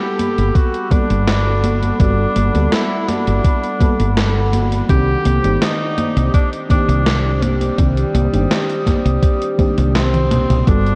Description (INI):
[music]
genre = vaporwave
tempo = 83 BPM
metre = 4/4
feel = straight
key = unclear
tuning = A4 = 440 Hz
[part]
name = breathy tenor saxophone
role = melody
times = 0.0-11.0 s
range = G3 to G4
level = -24 LUFS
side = equal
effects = diffuse ambient delay
[part]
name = mellow FM electric piano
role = accompaniment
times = 0.0-11.0 s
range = Eb3 to F#5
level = -25 LUFS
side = equal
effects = subtle chorus, diffuse ambient delay
[part]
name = warbly tape-like pad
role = sustained chords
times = 0.0-11.0 s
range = A4 to Eb6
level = -31 LUFS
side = equal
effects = chorus, built-in reverb
[part]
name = gated 80s digital drum machine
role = drums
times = 0.2-11.0 s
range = congas, hi-hat, snare drum, toms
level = -23 LUFS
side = equal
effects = gated reverb, gated reverb snare
[part]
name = woody fretless electric bass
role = bass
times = 0.4-10.9 s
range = G1 to D2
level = -19 LUFS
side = equal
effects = none
[part]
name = electronic kick drum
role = drums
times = 0.6-10.8 s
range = none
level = -17 LUFS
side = equal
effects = none
[sound]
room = moderate huge ambient reverb, RT60 4.5 s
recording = dreamy mix soaked in reverb, cassette tape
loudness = -16 LUFS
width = mono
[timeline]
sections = 0.0-10.7 A section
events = drum fill 9.6-10.7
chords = 0.0 Gmaj9; 4.9 Cmadd9